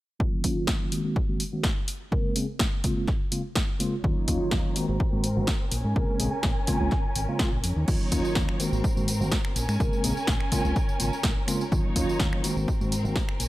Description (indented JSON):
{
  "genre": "filtered disco house",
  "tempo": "125 BPM",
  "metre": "4/4",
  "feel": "swing 53% on 16ths",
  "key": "Bb minor",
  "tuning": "A4 = 441 Hz",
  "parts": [
    { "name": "mellow tine electric piano", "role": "accompaniment", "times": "0.2-13.2 s", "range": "Db3 to Bb4", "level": "-30 LUFS", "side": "equal", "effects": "medium stereo tremolo, phaser, sidechain pumping, low-pass filter" },
    { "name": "electronic kick drum", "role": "drums", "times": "0.2-13.3 s", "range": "none", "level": "-27 LUFS", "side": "equal", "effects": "none" },
    { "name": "tambourine", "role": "percussion", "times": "0.2-13.5 s", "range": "none", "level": "-48 LUFS", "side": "right 1 dB", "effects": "none" },
    { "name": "punchy analog drum machine", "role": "drums", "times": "0.4-13.5 s", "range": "crash cymbal, finger snaps, hi-hat, snare drum, tambourine", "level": "-31 LUFS", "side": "equal", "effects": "sidechain pumping on hats, sidechain pumping on cymbals, sidechain pumping on perc" },
    { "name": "warm symphonic violin section", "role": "sustained chords", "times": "4.0-13.5 s", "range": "C4 to Ab5", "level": "-33 LUFS", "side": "equal", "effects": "sidechain pumping, low-pass filter" },
    { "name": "fingered electric bass", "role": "bass", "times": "4.0-13.5 s", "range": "Ab1 to Ab2", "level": "-29 LUFS", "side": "equal", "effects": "sidechain pumping, low-pass filter" }
  ],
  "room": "light reverb, digital ambience",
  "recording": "none",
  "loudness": "-24 LUFS",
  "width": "side -17 dB against mid",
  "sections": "0.2-7.9 A section; 7.9-13.5 B section",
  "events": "filter sweep 0.2-7.9",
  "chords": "0.2 Ebm7; 0.9 Ab9; 1.9 Bbm7; 4.0 Ebm7; 4.8 Ab9; 5.7 Bbm7; 7.9 Ebm7; 8.6 Ab9; 9.6 Bbm7; 11.7 Ebm7; 12.4 Ab9"
}